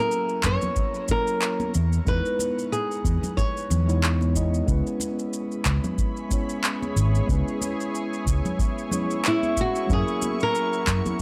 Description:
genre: sunset chillout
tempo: 92 BPM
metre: 4/4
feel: swing 56% on 16ths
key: C# dorian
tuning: A4 = 440 Hz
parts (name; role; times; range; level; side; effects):
- flamenco guitar; melody; 0.0-4.3, 9.3-11.2 s; E4 to C#5; -28 LUFS; equal; vintage 12-bit sampler grit, tape echo, shimmer reverb
- mellow tine electric piano; accompaniment; 0.0-11.2 s; F#3 to D#5; -32 LUFS; equal; tape echo, shimmer reverb
- electronic shaker and handclaps; drums; 0.1-11.2 s; none; -32 LUFS; equal; overdrive
- fretless electric bass; bass; 0.4-11.0 s; G#1 to F#2; -25 LUFS; equal; lush chorus
- electronic kick drum; drums; 0.4-11.2 s; none; -29 LUFS; equal; none
- congas; percussion; 0.6-11.2 s; none; -36 LUFS; equal; none
- shimmering ambient pad; sustained chords; 5.3-11.2 s; E4 to C#6; -35 LUFS; equal; chorus, built-in reverb, shimmer reverb
room: light reverb, digital ambience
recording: dry, gritty hardware recording, transformer saturation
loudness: -24 LUFS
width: mono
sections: 0.0-11.2 A section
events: none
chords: 0.0 F#7; 1.7 Emaj7; 4.7 C#m7; 9.9 F#7

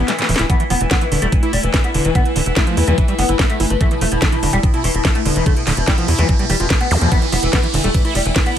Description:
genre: psychedelic trance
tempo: 145 BPM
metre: 4/4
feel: straight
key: E phrygian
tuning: A4 = 438 Hz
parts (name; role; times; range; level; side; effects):
- oud; melody; 0.0-8.5 s; B2 to B3; -21 LUFS; left 3 dB; phaser, sidechain pumping, digital delay
- evolving wavetable pad; sustained chords; 0.0-8.6 s; E4; -24 LUFS; right 2 dB; phaser, built-in reverb, sidechain pumping
- screaming distorted acid line; riff; 0.0-8.4 s; D3 to F4; -24 LUFS; moving between left 2 dB and right 4 dB; distortion, chorus, auto-pan, sidechain pumping, dub echo
- tight sequencer bass; bass; 0.0-8.3 s; D1 to E2; -18 LUFS; equal; none
- garage drum kit; drums; 0.1-8.5 s; hi-hat, ride cymbal, snare drum; -21 LUFS; equal; none
- electronic kick drum; drums; 0.5-8.4 s; none; -16 LUFS; equal; none
- zap; sound effects; 6.9-7.0 s; none; -24 LUFS; equal; none
room: digital ambience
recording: none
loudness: -14 LUFS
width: side -10 dB against mid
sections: 0.0-8.6 A section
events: break 0.0-0.5; drum fill 0.1-0.5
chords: 0.0 E5

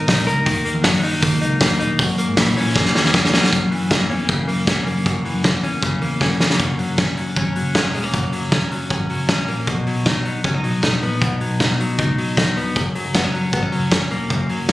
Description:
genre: jangly indie pop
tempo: 156 BPM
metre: 4/4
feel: straight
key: F# mixolydian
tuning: A4 = 437 Hz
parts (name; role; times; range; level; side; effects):
- direct-recorded clean electric guitar; arpeggios; 0.0-14.7 s; F#2 to A#4; -21 LUFS; left 2 dB; none
- vintage muted picked electric bass; bass; 0.0-14.7 s; E1 to A#2; -23 LUFS; right 1 dB; none
- loose indie drum kit; drums; 0.1-14.7 s; hi-hat, kick drum, snare drum; -19 LUFS; equal; none
room: little or no reverb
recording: recorded on a phone in the room, studio reverb, compression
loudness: -16 LUFS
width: side -17 dB against mid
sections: 0.0-3.5 A section; 3.5-6.6 B section; 6.6-14.7 C section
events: drum fill 2.8-3.5, 6.2-6.6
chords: 0.5 D#m; 2.0 F#7; 6.6 F#; 9.7 B; 12.8 F#

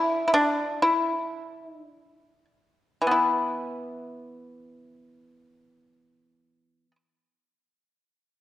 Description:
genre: chinese traditional, Chinese solo plucked strings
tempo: free time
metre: none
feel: none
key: unclear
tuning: A4 = 440 Hz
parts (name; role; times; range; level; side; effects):
- pipa; solo; 0.0-7.0 s; E3 to E4; -23 LUFS; left 1 dB; none
room: wet scoring stage reverb, RT60 1.6 s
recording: worn, warbling old tape, cassette tape, warbly pitch drift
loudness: -22 LUFS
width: side -14 dB against mid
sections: 0.0-3.1 A section; 3.1-8.4 B section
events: slowing down 0.0-3.1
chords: none

